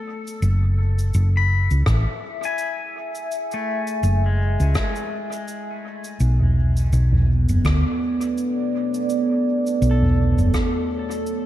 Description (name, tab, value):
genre	ambient dub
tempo	83 BPM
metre	4/4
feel	swing 56% on 16ths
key	B dorian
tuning	A4 = 440 Hz
part	deep dark ambient pad	sustained chords	0.0-11.5 s	B3 to G#5	-25 LUFS	right 1 dB	chorus, built-in reverb, vintage 12-bit sampler grit
part	pedal steel guitar	arpeggios	0.0-11.5 s	G#3 to B5	-31 LUFS	left 4 dB	tape echo
part	soft-mallet drum kit	drums	0.3-11.4 s	cabasa, rim click, toms	-26 LUFS	right 1 dB	none
part	hollow-body short-scale fingered electric bass	bass	0.4-10.5 s	F#1 to D2	-17 LUFS	equal	none
part	electronic kick drum	drums	1.9-10.7 s	none	-25 LUFS	equal	none
room	studio reverb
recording	dark, warm production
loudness	-18 LUFS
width	side -13 dB against mid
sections	0.0-11.5 A section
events	none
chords	0.4 F#m7; 6.2 Bm9